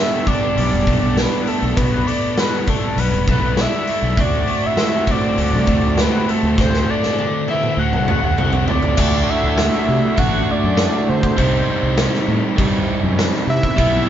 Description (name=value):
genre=indie rock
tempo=100 BPM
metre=4/4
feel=straight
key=unclear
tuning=A4 = 440 Hz
part: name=fat analog lead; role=melody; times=0.0-14.1 s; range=A4 to F#5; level=-22 LUFS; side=equal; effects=none
part: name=biting overdriven guitar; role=riff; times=0.0-14.1 s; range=B2 to G4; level=-24 LUFS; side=left 4 dB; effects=none
part: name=overdriven electric guitar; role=riff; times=0.0-14.1 s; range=G3 to G4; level=-22 LUFS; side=right 3 dB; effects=none
part: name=big rock drum kit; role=drums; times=0.3-13.9 s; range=crash cymbal, hi-hat, kick drum, snare drum, toms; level=-20 LUFS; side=equal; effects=none
part: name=fuzz fingered electric bass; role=bass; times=0.6-14.0 s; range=E1 to D3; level=-21 LUFS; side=equal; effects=overdrive
room=moderate studio reverb, RT60 0.7 s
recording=band playing live in one room, nothing above 7.5 kHz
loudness=-15 LUFS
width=side -10 dB against mid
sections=0.0-9.0 A section; 9.0-14.1 B section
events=drum fill 6.6-9.0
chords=0.0 Gadd9; 4.2 D7; 9.0 Dadd9; 11.4 Cm